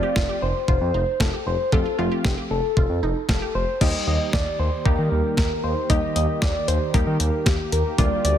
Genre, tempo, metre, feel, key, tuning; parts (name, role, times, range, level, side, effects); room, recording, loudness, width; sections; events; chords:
synth-pop; 115 BPM; 4/4; straight; A4 = 439 Hz
soft struck synth lead; melody; 0.0-8.4 s; F4 to Eb5; -25 LUFS; left 1 dB; chorus, tape echo
funky polysynth comp; accompaniment; 0.0-8.4 s; F3 to G4; -29 LUFS; left 1 dB; chorus
wide unison pluck; arpeggios; 0.0-3.6 s; Eb4 to G4; -34 LUFS; right 4 dB; tape echo
smooth synth bass; bass; 0.2-8.3 s; F1 to Eb3; -25 LUFS; equal
clean 12-bit digital drum machine; drums; 0.2-8.4 s; crash cymbal, hi-hat, kick drum, snare drum; -23 LUFS; equal
warm analog pad; sustained chords; 4.0-8.4 s; D3 to G4; -31 LUFS; right 3 dB; chorus
light reverb; dense, heavily limited modern master; -19 LUFS; side -10 dB against mid
0.0-3.8 A section; 3.8-8.4 B section
0.0 F; 3.8 Eb